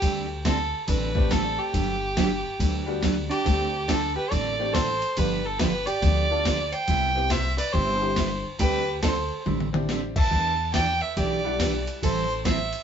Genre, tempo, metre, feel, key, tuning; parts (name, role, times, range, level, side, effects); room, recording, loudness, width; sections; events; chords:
country, western swing; 140 BPM; 4/4; swing 64% on 8ths; G major; A4 = 440 Hz
clear fiddle; melody; 0.0-12.8 s; G4 to A5; -27 LUFS; right 1 dB
picked steel-string acoustic guitar; accompaniment; 0.0-12.6 s; C3 to A4; -30 LUFS; right 4 dB
upright bass; bass; 0.0-12.7 s; G1 to E2; -29 LUFS; left 1 dB
breakbeat sampler-style drum kit; drums; 0.0-12.8 s; crash cymbal, hi-hat, kick drum, ride cymbal, snare drum, toms; -28 LUFS; left 1 dB
tack piano; accompaniment; 1.1-12.0 s; G3 to F#5; -32 LUFS; left 4 dB
hollow-body jazz guitar; second line; 3.3-12.8 s; D4 to E5; -33 LUFS; right 4 dB
light reverb; band playing live in one room, nothing above 7.8 kHz; -22 LUFS; side -8 dB against mid
0.0-12.8 A section
drum fill 9.5-9.9
0.0 D7sus4; 1.7 Gmaj7; 3.5 D7sus4; 5.2 G7; 6.9 Cmaj7; 8.6 D9sus4; 10.3 Em9; 12.0 Am7